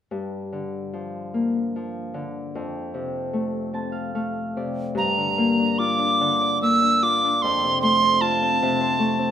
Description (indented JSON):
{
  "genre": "celtic folk, Celtic slow air",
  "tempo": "74 BPM",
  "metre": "3/4",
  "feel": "rubato",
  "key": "G minor",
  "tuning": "A4 = 440 Hz",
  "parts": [
    { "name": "Celtic harp", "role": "accompaniment", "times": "0.1-9.3 s", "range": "F2 to A5", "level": "-24 LUFS", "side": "left 2 dB", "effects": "none" },
    { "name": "bright wooden whistle", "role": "melody", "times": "5.0-9.3 s", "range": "A5 to E6", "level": "-19 LUFS", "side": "right 2 dB", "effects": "none" }
  ],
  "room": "moderate concert hall reverb, RT60 1.9 s",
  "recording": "minimal, uncompressed stereo recording",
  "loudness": "-20 LUFS",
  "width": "side -9 dB against mid",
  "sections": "0.1-5.0 A section; 5.0-9.3 B section",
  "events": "harp fill 3.3-5.0",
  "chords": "0.1 Gm7; 2.5 F; 5.0 Gm7; 7.4 F"
}